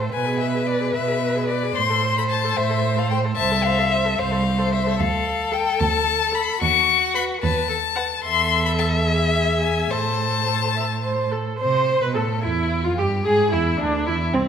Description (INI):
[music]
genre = quick classical-period movement for string quartet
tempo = 74 BPM (dotted quarters)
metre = 6/8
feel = straight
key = A minor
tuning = A4 = 441 Hz
[part]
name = rich violin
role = second line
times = 0.0-14.5 s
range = C4 to F#5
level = -25 LUFS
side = left 2 dB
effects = none
[part]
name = rich viola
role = accompaniment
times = 0.0-14.4 s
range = C4 to E5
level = -25 LUFS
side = right 2 dB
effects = none
[part]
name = rich cello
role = bass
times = 0.0-14.4 s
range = C2 to C3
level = -24 LUFS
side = right 3 dB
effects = none
[part]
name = rich violin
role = melody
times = 0.1-14.5 s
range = C4 to C#6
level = -23 LUFS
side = left 8 dB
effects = none
[sound]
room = wet recital hall reverb, RT60 1.6 s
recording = none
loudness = -18 LUFS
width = side -8 dB against mid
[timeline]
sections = 0.0-11.6 A section; 11.6-14.5 A section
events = none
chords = 0.1 E/B; 1.8 Am; 3.4 Am/C; 5.0 Dm; 6.6 B7/D#; 8.2 Am/E; 9.1 E; 9.9 Am; 13.3 E7